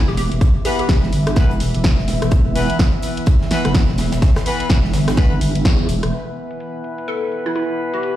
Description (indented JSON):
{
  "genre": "bass house",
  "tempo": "126 BPM",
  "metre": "4/4",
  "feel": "swing 60% on 16ths",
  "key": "E minor",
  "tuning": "A4 = 439 Hz",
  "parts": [
    { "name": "hollow square pluck", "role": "melody", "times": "0.0-0.9, 7.1-8.0 s", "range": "E4 to A4", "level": "-25 LUFS", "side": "left 1 dB", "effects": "wide subtle chorus, ping-pong delay" },
    { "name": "deep dark ambient pad", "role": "sustained chords", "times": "0.1-8.2 s", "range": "E3 to E5", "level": "-26 LUFS", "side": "equal", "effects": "chorus, built-in reverb, sidechain pumping" },
    { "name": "vowel-sweep wobble bass", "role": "bass", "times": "0.0-6.1 s", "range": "E1 to E2", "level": "-19 LUFS", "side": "equal", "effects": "chorus, overdrive, sidechain pumping" },
    { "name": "crisp fusion drum kit", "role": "drums", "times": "0.1-6.0 s", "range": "hi-hat, snare drum", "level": "-34 LUFS", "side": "right 1 dB", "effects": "high-pass filter on hats, studio ambience, high-pass filter on snare, high-pass filter on room" },
    { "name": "house drum kit", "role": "drums", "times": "0.2-8.1 s", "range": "hi-hat, rim click, snare drum", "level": "-24 LUFS", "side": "equal", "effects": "low-pass filter on snare, studio ambience, low-pass filter on hats" },
    { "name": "electronic kick drum", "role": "drums", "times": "0.4-5.8 s", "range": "none", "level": "-15 LUFS", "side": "equal", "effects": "studio ambience" },
    { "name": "bright horn section", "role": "stabs", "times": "0.7-8.2 s", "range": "E3 to B4", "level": "-25 LUFS", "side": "left 2 dB", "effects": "sidechain pumping, low-pass filter, ping-pong delay" }
  ],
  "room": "light reverb",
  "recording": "played on a big sound system in a bare room, stone room reverb",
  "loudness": "-15 LUFS",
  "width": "side -13 dB against mid",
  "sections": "0.0-6.1 A section; 6.1-8.2 B section",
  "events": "band accent 5.7; filter sweep on drum 6.1-8.2; filter sweep on horn section 6.1-8.2; filter sweep on ambient pad 6.1-8.2",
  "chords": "0.0 E5"
}